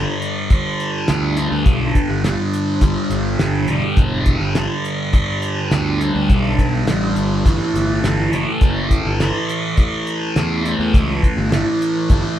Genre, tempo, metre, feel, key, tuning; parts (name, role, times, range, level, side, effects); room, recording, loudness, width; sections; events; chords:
psychedelic rock; 104 BPM; 4/4; straight; A4 = 440 Hz
thick fuzz guitar; riff; 0.0-12.4 s; G2 to A3; -19 LUFS; equal; distortion, phaser
fuzz picked electric bass; bass; 0.0-12.2 s; E1 to E2; -21 LUFS; equal; overdrive
cloth-damped thuddy drum kit; drums; 0.2-12.2 s; hi-hat, kick drum, snare drum; -16 LUFS; equal
light reverb; band playing live in one room; -15 LUFS; side -11 dB against mid
0.0-12.4 A section
0.0 G5; 7.5 A5